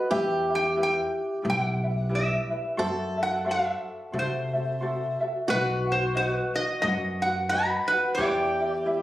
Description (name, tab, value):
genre	Hawaiian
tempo	89 BPM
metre	4/4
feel	swing 60% on 8ths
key	E minor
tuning	A4 = 441 Hz
part	picked swing-style acoustic guitar	second line	0.0-9.0 s	F#4 to B4	-30 LUFS	equal	none
part	ukulele	accompaniment	0.0-9.0 s	E4 to F#5	-30 LUFS	left 1 dB	none
part	upright bass	bass	0.1-9.0 s	B1 to C3	-31 LUFS	equal	none
part	metal-body resonator slide guitar	melody	0.6-9.0 s	B4 to B5	-27 LUFS	equal	plate reverb
room	wet small room ambience, RT60 0.5 s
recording	recorded on a phone in the room, studio reverb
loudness	-24 LUFS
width	side -15 dB against mid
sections	0.0-9.0 A section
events	none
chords	0.1 Em; 2.8 F#m7b5; 5.5 B; 8.2 Em